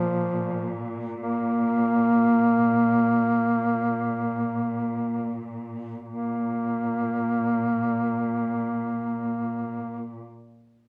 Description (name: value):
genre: caucasian folk, Caucasian lament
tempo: free time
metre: none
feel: none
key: unclear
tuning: A4 = 440 Hz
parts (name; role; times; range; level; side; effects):
- mellow duduk; melody; 0.0-10.2 s; F3 to Bb3; -25 LUFS; equal; none
- muted studio string section; drone; 0.0-10.2 s; Bb2; -35 LUFS; equal; none
room: moderate studio reverb, RT60 0.5 s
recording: none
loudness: -25 LUFS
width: mono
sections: 0.0-6.1 A section; 6.1-10.9 B section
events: slowing down 0.0-6.1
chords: none